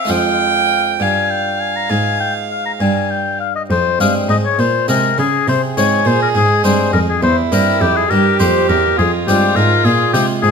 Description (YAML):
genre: classical, baroque-style sonata movement with continuo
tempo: 68 BPM (dotted quarters)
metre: 12/8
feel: straight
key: F minor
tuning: A4 = 440 Hz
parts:
  - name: warm oboe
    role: melody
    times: 0.0-10.5 s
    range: G4 to Bb5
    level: -16 LUFS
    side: left 8 dB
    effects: none
  - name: warm violin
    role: second line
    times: 0.0-10.5 s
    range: E4 to G5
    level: -19 LUFS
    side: right 9 dB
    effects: none
  - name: harpsichord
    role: accompaniment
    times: 0.0-10.5 s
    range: E2 to C5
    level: -19 LUFS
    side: right 1 dB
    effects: none
  - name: rich cello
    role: bass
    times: 0.0-10.5 s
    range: E2 to Db3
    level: -18 LUFS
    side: right 1 dB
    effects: none
room: light reverb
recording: close, detailed microphones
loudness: -12 LUFS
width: side -5 dB against mid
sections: 0.0-3.7 A section; 3.7-10.5 B section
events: none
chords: 0.1 Fm; 7.2 C7/E; 9.0 Fm